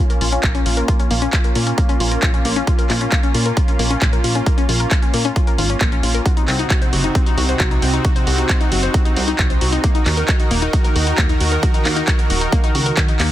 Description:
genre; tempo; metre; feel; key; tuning
uplifting trance; 134 BPM; 4/4; straight; Bb minor; A4 = 440 Hz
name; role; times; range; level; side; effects
supersaw pad; sustained chords; 0.0-13.3 s; C3 to Bb4; -23 LUFS; right 1 dB; sidechain pumping
analog pluck; arpeggios; 0.0-13.3 s; Bb3 to C5; -23 LUFS; left 4 dB; chorus, vintage 12-bit sampler grit, sidechain pumping, digital delay
punchy analog drum machine; drums; 0.1-13.3 s; handclaps, hi-hat; -23 LUFS; right 1 dB; sidechain pumping on hats, sidechain pumping on cymbals
plucky analog bass; bass; 0.2-13.3 s; Eb1 to Bb2; -20 LUFS; equal; sidechain pumping
electronic kick drum; drums; 0.4-13.1 s; none; -16 LUFS; equal; overdrive
room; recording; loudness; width
digital ambience; dense, heavily limited modern master; -14 LUFS; side -13 dB against mid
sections
0.0-13.3 A section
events
filter sweep on synth arpeggio sound 0.0-13.3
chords
0.0 Bbm; 6.3 Cdim; 9.8 Ebm

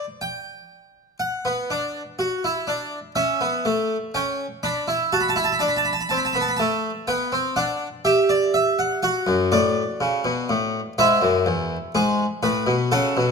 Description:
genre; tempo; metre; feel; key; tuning
classical, baroque-style 3-part fugue for harpsichord; 61 BPM; 4/4; straight; unclear; A4 = 440 Hz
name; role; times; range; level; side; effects
harpsichord; solo; 0.0-13.3 s; E2 to B5; -20 LUFS; equal; none
room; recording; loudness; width
moderate recital hall reverb, RT60 1.7 s; close, detailed microphones; -20 LUFS; side -5 dB against mid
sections
0.0-1.2 A section; 1.2-13.3 B section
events
none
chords
0.0 N.C.; 1.2 Bmadd11; 3.2 A7; 5.1 D7; 7.1 G/B; 9.0 D/F#; 11.0 E

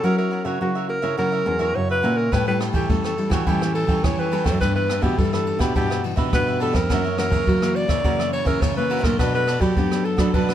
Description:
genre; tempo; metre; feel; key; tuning
samba and choro; 105 BPM; 4/4; straight; unclear; A4 = 440 Hz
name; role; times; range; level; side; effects
breathy alto saxophone; melody; 0.0-10.5 s; F#4 to D5; -24 LUFS; equal; none
cavaquinho; accompaniment; 0.0-10.5 s; D4 to G5; -30 LUFS; right 5 dB; none
nylon-string guitar; accompaniment; 0.0-10.5 s; F#2 to A#4; -26 LUFS; left 4 dB; none
nylon-string guitar; bass; 0.0-10.5 s; E2 to B3; -24 LUFS; right 1 dB; none
jazz brush drum kit; drums; 2.3-10.5 s; kick drum, ride cymbal, rim click; -24 LUFS; equal; none
room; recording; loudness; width
light reverb; dark, warm production; -18 LUFS; side -10 dB against mid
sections
0.0-10.5 A section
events
none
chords
0.0 F#7; 2.3 A7; 4.6 Em7/G; 6.9 F#7; 9.2 Bm7

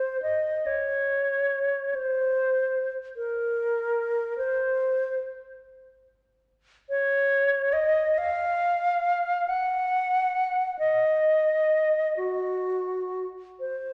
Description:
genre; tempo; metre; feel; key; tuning
classical, free, expressive piece for unaccompanied alto flute; 40-51 BPM (dotted quarters); 6/8; rubato; unclear; A4 = 440 Hz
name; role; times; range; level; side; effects
bright alto flute; solo; 0.0-13.9 s; Gb4 to Gb5; -26 LUFS; equal; none
room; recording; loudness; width
wet scoring stage reverb, RT60 1.7 s; none; -26 LUFS; mono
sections
0.0-13.9 A section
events
none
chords
none

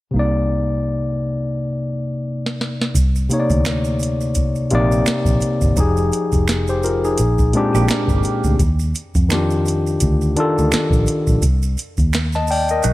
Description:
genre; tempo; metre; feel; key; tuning
R&B, neo-soul; 85 BPM; 4/4; swing 57% on 16ths; C minor; A4 = 440 Hz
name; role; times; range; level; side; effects
overdriven tine electric piano; accompaniment; 0.1-12.9 s; Bb2 to A5; -19 LUFS; left 2 dB; none
vintage muted fingered electric bass; bass; 0.1-12.9 s; F1 to F2; -20 LUFS; equal; none
soft vintage rhythm box; drums; 2.5-12.9 s; hi-hat, kick drum, snare drum; -20 LUFS; equal; none
maracas and finger snaps; percussion; 3.0-12.9 s; none; -30 LUFS; right 7 dB; none
electric guitar through a small old amp; second line; 7.7-8.6, 12.8-12.9 s; F#3 to Bb4; -25 LUFS; right 10 dB; phaser
room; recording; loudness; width
little or no reverb; none; -16 LUFS; side -17 dB against mid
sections
0.1-3.0 A section; 3.0-12.9 B section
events
drum fill 1.5-3.0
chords
0.1 Cm9; 5.8 Fm9; 7.2 Bb13; 8.6 Ebmaj9; 11.4 Cm

